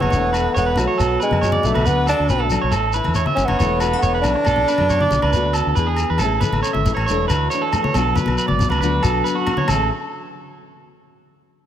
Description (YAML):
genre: highlife guitar band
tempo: 138 BPM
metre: 4/4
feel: straight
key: A major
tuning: A4 = 435 Hz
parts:
  - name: breathy tenor saxophone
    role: melody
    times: 0.0-5.7 s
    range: F#3 to D4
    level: -21 LUFS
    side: right 1 dB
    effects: slapback echo
  - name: nylon-string guitar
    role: accompaniment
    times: 0.0-9.9 s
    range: A2 to A4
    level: -25 LUFS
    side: left 7 dB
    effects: none
  - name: electric guitar at the edge of break-up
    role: arpeggios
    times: 0.0-9.9 s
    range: F#4 to E5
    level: -22 LUFS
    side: right 4 dB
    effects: slapback echo
  - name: fingered electric bass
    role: bass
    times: 0.0-9.9 s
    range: E1 to F#2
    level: -22 LUFS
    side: equal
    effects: none
  - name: agogo bells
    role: percussion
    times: 0.0-9.8 s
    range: none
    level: -29 LUFS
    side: equal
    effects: none
  - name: congas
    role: percussion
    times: 0.0-9.9 s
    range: none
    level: -27 LUFS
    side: left 2 dB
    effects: none
  - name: shekere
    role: percussion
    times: 0.1-9.9 s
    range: none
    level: -25 LUFS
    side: left 2 dB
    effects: none
room: moderate plate reverb, RT60 2.7 s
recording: none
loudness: -16 LUFS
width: side -10 dB against mid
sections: 0.0-6.2 A section; 6.2-9.7 B section; 9.7-11.4 C section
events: none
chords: 0.1 E7sus4; 1.0 Bm; 2.7 A; 3.6 E7sus4; 4.5 Bm; 5.3 D6; 5.8 E7; 6.2 Amaj7; 7.1 E7sus4; 7.9 Bm; 8.8 D6; 9.7 A